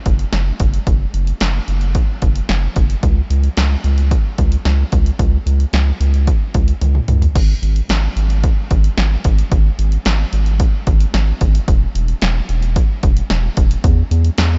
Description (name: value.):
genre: synth-pop.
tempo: 111 BPM.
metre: 4/4.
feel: straight.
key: unclear.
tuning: A4 = 440 Hz.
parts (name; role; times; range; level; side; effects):
round analog bass; bass; 0.1-14.6 s; E1 to E2; -17 LUFS; equal; none.
punchy analog drum machine; drums; 0.1-14.5 s; crash cymbal, hi-hat, kick drum, snare drum, toms; -19 LUFS; equal; none.
room: little or no reverb.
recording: nothing above 7.8 kHz.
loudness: -16 LUFS.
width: mono.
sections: 0.0-7.4 A section; 7.4-14.6 B section.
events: drum fill 6.8-7.4.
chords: none.